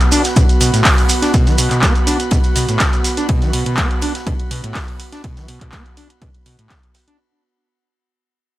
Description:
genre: acid house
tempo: 123 BPM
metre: 4/4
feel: straight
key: B minor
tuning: A4 = 440 Hz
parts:
  - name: punchy analog drum machine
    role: drums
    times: 0.0-7.2 s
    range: handclaps, hi-hat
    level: -19 LUFS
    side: equal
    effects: none
  - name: maracas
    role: percussion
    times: 0.0-3.3 s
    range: none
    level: -24 LUFS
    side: right 3 dB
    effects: none
  - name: airy breathy pad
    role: texture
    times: 0.0-7.2 s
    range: B3 to B5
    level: -23 LUFS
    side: right 2 dB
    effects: chorus, sidechain pumping
  - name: overdriven acid bass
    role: riff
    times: 0.1-7.2 s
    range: A2 to D4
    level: -20 LUFS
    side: equal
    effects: distortion, lush chorus, sidechain pumping, analog delay
  - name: tight funk drum kit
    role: drums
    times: 0.1-7.1 s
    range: hi-hat, ride cymbal, snare drum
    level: -32 LUFS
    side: left 1 dB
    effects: none
  - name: electronic kick drum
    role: drums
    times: 0.4-6.8 s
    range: none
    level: -16 LUFS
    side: equal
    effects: none
room: studio ambience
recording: dry, gritty hardware recording, transformer saturation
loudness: -13 LUFS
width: side -16 dB against mid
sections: 0.0-7.2 A section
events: fade-out 0.0-7.2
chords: 0.0 B5

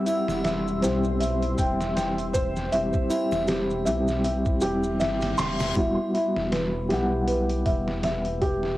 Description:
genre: trip hop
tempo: 79 BPM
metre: 4/4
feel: swing 57% on 16ths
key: E minor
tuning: A4 = 440 Hz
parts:
  - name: mellow reed electric piano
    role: accompaniment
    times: 0.0-8.8 s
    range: G3 to F#5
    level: -28 LUFS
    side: equal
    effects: fast tremolo, cassette tape, tape echo
  - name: deep dark ambient pad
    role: sustained chords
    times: 0.0-5.7 s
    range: G3 to E6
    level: -35 LUFS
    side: left 2 dB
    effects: chorus, built-in reverb, cassette tape
  - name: felt-muted upright piano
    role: arpeggios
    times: 0.0-8.8 s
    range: E4 to C6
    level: -26 LUFS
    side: equal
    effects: low-pass filter, cassette tape, tape echo
  - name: trip hop sampler-style drum kit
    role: drums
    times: 0.1-8.8 s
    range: hi-hat, kick drum, snare drum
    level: -30 LUFS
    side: equal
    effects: studio reverb, cassette tape
  - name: maracas and triangle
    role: percussion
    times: 0.1-5.7 s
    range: none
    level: -42 LUFS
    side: right 2 dB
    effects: none
  - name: dark detuned saw bass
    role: bass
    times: 0.3-8.8 s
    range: E1 to B1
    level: -31 LUFS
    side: equal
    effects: none
  - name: reverse cymbal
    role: sound effects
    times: 5.1-5.8 s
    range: none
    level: -38 LUFS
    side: left 7 dB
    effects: none
room: light reverb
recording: home recording on cassette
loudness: -22 LUFS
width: side -16 dB against mid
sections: 0.0-5.8 A section; 5.8-8.8 A section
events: reverse cymbal 5.1-5.8; filter sweep on felt piano 5.8-8.8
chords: 0.0 C/E; 5.8 Emadd9

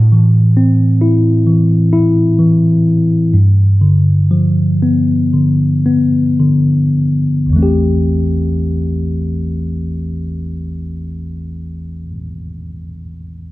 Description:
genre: pop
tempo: 51-68 BPM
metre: 4/4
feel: straight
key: A minor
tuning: A4 = 440 Hz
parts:
  - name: tine electric piano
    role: accompaniment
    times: 0.0-13.5 s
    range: A1 to G4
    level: -11 LUFS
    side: equal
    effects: none
room: light reverb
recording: dark, warm production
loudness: -10 LUFS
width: side -18 dB against mid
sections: 0.0-7.5 A section; 7.5-12.2 B section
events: slowing down 0.0-7.5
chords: 0.0 Am; 3.3 G7; 7.5 Am7

